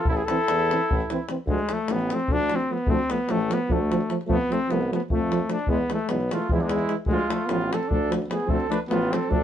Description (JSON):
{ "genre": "balkan folk, Balkan brass band", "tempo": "300 BPM (eighths)", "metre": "7/8", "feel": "straight", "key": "unclear", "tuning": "A4 = 441 Hz", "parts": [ { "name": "mellow flugelhorn", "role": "melody", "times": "0.0-9.4 s", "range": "F3 to A4", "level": "-26 LUFS", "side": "left 2 dB", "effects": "none" }, { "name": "mellow trumpet", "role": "second line", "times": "0.0-1.3, 6.3-9.4 s", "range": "D4 to B4", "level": "-29 LUFS", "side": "right 4 dB", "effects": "none" }, { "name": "clear tuba", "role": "bass", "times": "0.1-9.4 s", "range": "A1 to F2", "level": "-29 LUFS", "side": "equal", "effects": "none" }, { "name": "davul", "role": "percussion", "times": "0.1-9.4 s", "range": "none", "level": "-28 LUFS", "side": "left 1 dB", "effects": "none" }, { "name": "dark euphonium", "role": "accompaniment", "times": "0.3-9.4 s", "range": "E3 to F3", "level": "-30 LUFS", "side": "right 5 dB", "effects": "none" }, { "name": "mellow trombone", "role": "accompaniment", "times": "0.3-9.4 s", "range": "G#3 to C4", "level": "-31 LUFS", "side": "left 5 dB", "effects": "none" } ], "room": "moderate studio reverb, RT60 0.5 s", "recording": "band playing live in one room, nothing above 10.8 kHz", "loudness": "-22 LUFS", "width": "side -10 dB against mid", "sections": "0.0-1.5 A section; 1.5-9.4 B section", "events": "none", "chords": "0.0 Am; 1.5 Dm; 4.3 F; 5.7 E; 7.1 Dm", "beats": "| 0.08 0.28 0.48 0.68 0.88 1.08 1.28 | 1.48 1.68 1.88 2.08 2.28 2.48 2.68 | 2.88 3.08 3.28 3.48 3.68 3.88 4.08 | 4.28 4.48 4.68 4.88 5.08 5.28 5.48 | 5.68 5.88 6.08 6.28 6.48 6.68 6.88 | 7.08 7.29 7.49 7.69 7.89 8.09 8.29 | 8.49 8.69 8.89 9.09 9.29" }